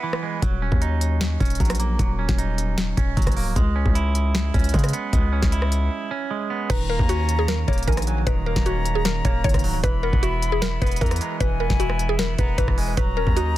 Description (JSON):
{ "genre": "hip hop, trap", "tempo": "153 BPM", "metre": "4/4", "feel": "half-time", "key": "Eb phrygian", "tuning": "A4 = 440 Hz", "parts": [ { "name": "semi-hollow electric guitar", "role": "accompaniment", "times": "0.0-13.6 s", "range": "Eb3 to E4", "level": "-28 LUFS", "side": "right 6 dB", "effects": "none" }, { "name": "trap drum kit", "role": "drums", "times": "0.1-13.5 s", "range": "crash cymbal, hi-hat, kick drum, rim click, snare drum", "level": "-22 LUFS", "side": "equal", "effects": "none" }, { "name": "hard-hitting 808-style bass", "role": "bass", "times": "0.4-13.6 s", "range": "Db1 to Db3", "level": "-23 LUFS", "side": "equal", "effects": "none" }, { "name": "mallet-like synth pluck", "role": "melody", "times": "6.7-13.6 s", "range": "Gb4 to Db5", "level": "-27 LUFS", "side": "equal", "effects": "chorus, digital delay" }, { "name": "silver concert flute", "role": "second line", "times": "6.7-13.6 s", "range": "Ab5 to B5", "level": "-31 LUFS", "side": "left 6 dB", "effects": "digital delay" } ], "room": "digital ambience", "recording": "dense, heavily limited modern master", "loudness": "-19 LUFS", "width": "side -14 dB against mid", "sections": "0.0-6.7 A section; 6.7-13.6 B section", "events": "break 0.0-0.4, 5.9-6.7", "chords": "0.4 Ebm7; 3.6 Dbm7; 6.7 Ebm7; 9.8 E; 13.0 Ebm7" }